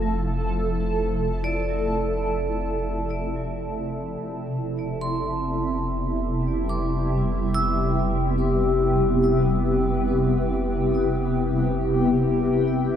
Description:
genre	ambient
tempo	free time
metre	none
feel	none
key	unclear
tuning	A4 = 438 Hz
part	shimmering ambient pad	sustained chords	0.0-13.0 s	C3 to A4	-22 LUFS	left 1 dB	chorus, built-in reverb, phaser
part	vibraphone with hard mallets	arpeggios	0.0-13.0 s	F3 to E6	-33 LUFS	right 2 dB	ping-pong delay
part	warm sub bass	bass	0.0-13.0 s	F1	-30 LUFS	equal	none
room	wet cathedral reverb, RT60 6.8 s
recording	in a vast, echoing space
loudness	-21 LUFS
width	side -9 dB against mid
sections	0.0-13.0 A section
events	fade-in on vibraphone 0.0-13.0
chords	0.0 Fmaj7; 4.2 Cmaj7/F

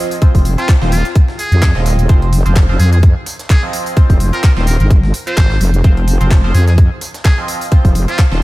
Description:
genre	bass house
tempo	128 BPM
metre	4/4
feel	swing 55% on 16ths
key	F minor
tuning	A4 = 440 Hz
part	band-passed chord stab	stabs	0.0-8.4 s	F3 to Eb5	-22 LUFS	right 2 dB	phaser, sidechain pumping, analog delay
part	garage drum kit	drums	0.1-8.3 s	handclaps, hi-hat	-24 LUFS	equal	none
part	breakbeat sampler-style drum kit	drums	0.2-8.4 s	hi-hat, snare drum	-33 LUFS	left 1 dB	none
part	electronic kick drum	drums	0.2-8.3 s	none	-10 LUFS	equal	none
part	wobble bass	bass	0.3-8.4 s	Eb1 to F2	-12 LUFS	equal	chorus, tube saturation, sidechain pumping
part	trumpet with metal mute	melody	0.6-8.2 s	F4 to C5	-24 LUFS	equal	vintage 12-bit sampler grit, analog delay
room	digital ambience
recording	none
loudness	-10 LUFS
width	side -18 dB against mid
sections	0.0-8.4 A section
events	none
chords	0.0 F5

